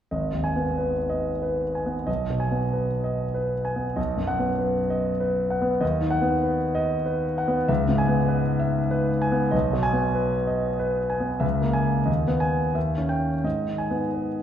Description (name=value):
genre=classical, romantic character piece for solo piano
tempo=85-100 BPM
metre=3/4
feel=rubato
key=G# minor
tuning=A4 = 444 Hz
part: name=warm concert grand piano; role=solo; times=0.1-14.4 s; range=G#1 to G#5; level=-22 LUFS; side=equal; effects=none
room=wet recital hall reverb, RT60 1.8 s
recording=heard from further back in the room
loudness=-22 LUFS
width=side -9 dB against mid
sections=0.1-14.4 A section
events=none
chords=0.1 G#m; 2.1 G#m/B; 4.0 B; 5.8 B/D#; 7.7 C#m7; 9.5 G#m/B; 11.4 A#m7b5/C#; 12.1 G#m/D#; 12.8 D#7b9; 13.4 G#m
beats=| 0.12 0.77 1.43 | 2.08 2.73 3.35 | 3.98 4.60 5.22 | 5.82 6.44 7.07 | 7.69 8.30 8.91 | 9.53 10.17 10.81 | 11.44 12.08 12.75 | 13.44 14.14